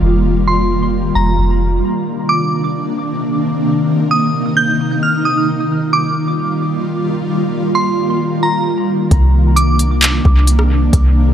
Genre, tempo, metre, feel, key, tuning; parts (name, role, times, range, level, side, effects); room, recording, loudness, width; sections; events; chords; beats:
hip hop, atmospheric cloud-rap; 132 BPM; 4/4; half-time; C minor; A4 = 440 Hz
ethereal airy pad; sustained chords; 0.0-11.3 s; C3 to F4; -16 LUFS; equal; ensemble chorus, built-in reverb, tremolo, sidechain pumping, low-pass filter
soft 808-style bass; bass; 0.0-1.8, 9.1-11.3 s; F1 to C2; -13 LUFS; equal
glassy synth bell; melody; 0.5-10.4 s; Bb5 to G6; -19 LUFS; right 1 dB; chorus, low-pass filter, dub echo
smooth R&B drum kit; drums; 9.1-11.0 s; handclaps, hi-hat, kick drum, rim click; -15 LUFS; equal; overdrive
digital ambience; echo-heavy mix; -12 LUFS; side -9 dB against mid
0.0-1.8 A section; 1.8-11.3 B section
filter sweep 0.0-1.8
0.0 F9sus4; 1.8 Cm9; 5.5 F9sus4; 9.1 Cm9
| 0.02 0.48 0.93 1.39 | 1.84 2.29 2.75 3.20 | 3.66 4.11 4.57 5.02 | 5.48 5.93 6.38 6.84 | 7.29 7.75 8.20 8.66 | 9.11 9.57 10.02 10.48 | 10.93